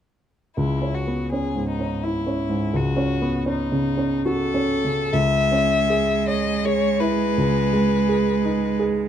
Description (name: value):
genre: classical, slow romantic movement for piano trio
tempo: 64-85 BPM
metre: 3/4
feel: rubato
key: C# minor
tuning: A4 = 439 Hz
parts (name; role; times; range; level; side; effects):
- rich violin; melody; 0.6-8.8 s; D#4 to E5; -24 LUFS; left 6 dB; none
- warm grand piano; accompaniment; 0.6-9.1 s; C#2 to C#5; -22 LUFS; equal; none
- rich cello; second line; 5.1-9.1 s; G#3; -23 LUFS; right 8 dB; none
room: light reverb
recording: dark, warm production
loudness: -19 LUFS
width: side -9 dB against mid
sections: 0.6-5.1 A section; 5.1-9.1 B section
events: none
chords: 0.6 C#m; 2.7 F#m/C#; 5.1 C#m; 7.4 G#m/C#